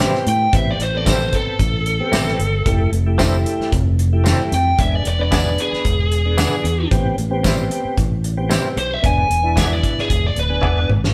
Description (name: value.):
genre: straight-eighth soul blues.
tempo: 113 BPM.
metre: 4/4.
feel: straight.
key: A minor.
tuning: A4 = 441 Hz.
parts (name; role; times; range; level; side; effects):
tonewheel organ; accompaniment; 0.0-10.9 s; A3 to B4; -27 LUFS; equal; chorus vibrato, slow rotary speaker.
direct-recorded clean electric guitar; stabs; 0.0-10.8 s; A2 to A4; -27 LUFS; equal; tremolo.
fingered electric bass; bass; 0.0-11.1 s; D1 to A2; -22 LUFS; equal; none.
warm soul drum kit; drums; 0.0-11.1 s; hi-hat, kick drum, snare drum, tambourine, toms; -23 LUFS; equal; none.
biting lead guitar; melody; 0.3-10.9 s; G#4 to G#5; -23 LUFS; equal; overdrive.
room: moderate stone room reverb, RT60 1.2 s.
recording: band playing live in one room.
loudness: -18 LUFS.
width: mono.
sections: 0.0-11.1 A section.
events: drum fill 10.6-11.1.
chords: 0.0 Am7; 2.7 Fmaj7; 4.8 E7; 6.9 Am7; 9.0 E7.